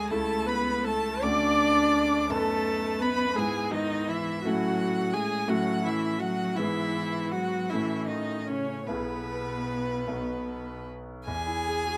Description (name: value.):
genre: classical, slow romantic movement for piano quartet.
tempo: 49-58 BPM (dotted quarters).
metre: 6/8.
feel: rubato.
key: E major.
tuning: A4 = 440 Hz.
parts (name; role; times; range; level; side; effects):
clear violin; melody; 0.0-12.0 s; B4 to D6; -36 LUFS; equal; none.
rich cello; second line; 0.0-12.0 s; B2 to G#4; -34 LUFS; equal; none.
bright concert grand piano; accompaniment; 0.0-12.0 s; B1 to B4; -34 LUFS; equal; none.
rich viola; accompaniment; 0.0-10.8 s; B3 to D5; -32 LUFS; equal; none.
room: moderate small room reverb, RT60 0.5 s.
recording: none.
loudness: -28 LUFS.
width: mono.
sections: 0.0-11.3 A section.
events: none.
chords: 0.1 A/C#; 1.2 Dmaj7; 2.3 B7/F#; 3.4 E/G#; 4.4 A; 5.5 F#m/A; 6.6 E/G#; 7.7 F#m/A; 8.9 E/B; 10.1 B; 11.3 E.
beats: | 0.09 1.22 | 2.30 3.37 | 4.44 5.49 | 6.57 7.71 | 8.88 10.07 | 11.27.